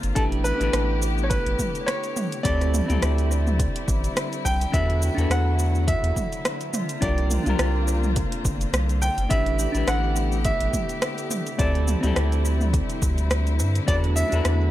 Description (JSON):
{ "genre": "sunset chillout", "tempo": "105 BPM", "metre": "4/4", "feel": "swing 55% on 16ths", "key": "unclear", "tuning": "A4 = 435 Hz", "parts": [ { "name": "semi-hollow electric guitar", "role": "accompaniment", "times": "0.0-14.7 s", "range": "C4 to B4", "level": "-31 LUFS", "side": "left 1 dB", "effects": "auto-pan, dub echo" }, { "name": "muted studio string section", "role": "sustained chords", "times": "0.0-14.7 s", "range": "D3 to G4", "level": "-32 LUFS", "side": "left 2 dB", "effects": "none" }, { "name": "round analog bass", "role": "bass", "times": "0.0-14.7 s", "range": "G1 to G2", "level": "-23 LUFS", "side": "equal", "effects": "none" }, { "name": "deep house drum kit", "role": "drums", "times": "0.0-14.6 s", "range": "hi-hat, rim click, shaker, toms", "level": "-28 LUFS", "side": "right 1 dB", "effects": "overdrive, tape echo" }, { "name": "bright concert grand piano", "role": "melody", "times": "0.2-14.7 s", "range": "A4 to G5", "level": "-29 LUFS", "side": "right 1 dB", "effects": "analog delay" }, { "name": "electronic kick drum", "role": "drums", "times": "0.2-14.0 s", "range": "none", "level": "-27 LUFS", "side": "equal", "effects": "overdrive" } ], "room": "digital ambience", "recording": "echo-heavy mix", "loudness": "-21 LUFS", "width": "side -14 dB against mid", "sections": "0.0-14.7 A section", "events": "none", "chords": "0.2 A9sus4; 2.5 D9sus4; 4.7 E9sus4; 6.7 C9sus4; 9.3 A9sus4; 11.6 D9sus4; 13.9 E9sus4" }